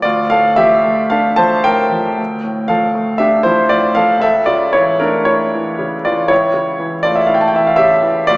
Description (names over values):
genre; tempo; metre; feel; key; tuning
classical, romantic nocturne for solo piano; 55-61 BPM; 4/4; rubato; unclear; A4 = 441 Hz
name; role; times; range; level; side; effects
clear grand piano; solo; 0.0-8.4 s; C#2 to A5; -11 LUFS; equal; none
room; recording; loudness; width
wet recital hall reverb, RT60 1.5 s; recorded in a church or concert hall, small speaker sound; -11 LUFS; side -24 dB against mid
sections
0.0-8.4 A section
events
none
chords
0.0 Dm; 4.2 A/C#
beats
| 0.04 1.11 2.19 3.22 | 4.24 5.28 6.30 7.30 | 8.31